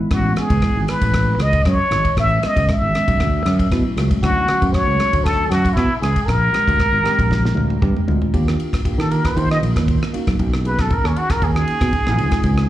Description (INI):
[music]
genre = electric jazz fusion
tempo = 117 BPM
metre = 4/4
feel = straight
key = unclear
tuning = A4 = 441 Hz
[part]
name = tine electric piano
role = accompaniment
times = 0.0-12.7 s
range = E3 to Bb4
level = -25 LUFS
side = equal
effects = wide subtle chorus, slapback echo
[part]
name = trumpet with plunger mute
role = melody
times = 0.1-12.7 s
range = C#4 to E5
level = -20 LUFS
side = equal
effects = slapback echo
[part]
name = fingered electric bass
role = bass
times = 0.1-12.6 s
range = G#1 to Eb3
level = -19 LUFS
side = equal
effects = none
[part]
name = damped 70s drum kit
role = drums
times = 0.1-12.7 s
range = kick drum, ride cymbal, rim click, snare drum, toms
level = -21 LUFS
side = equal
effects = none
[sound]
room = studio reverb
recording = live gig heard through the venue's PA, club reverb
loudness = -15 LUFS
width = side -13 dB against mid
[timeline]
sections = 0.0-8.3 A section; 8.3-12.7 B section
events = drum fill 7.3-8.3; muted trumpet solo 8.3-12.7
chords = 0.0 Amaj9; 3.2 Dmaj9; 6.3 Bb13; 8.3 Ebmaj9; 10.1 Bmaj9; 12.2 Dbmaj9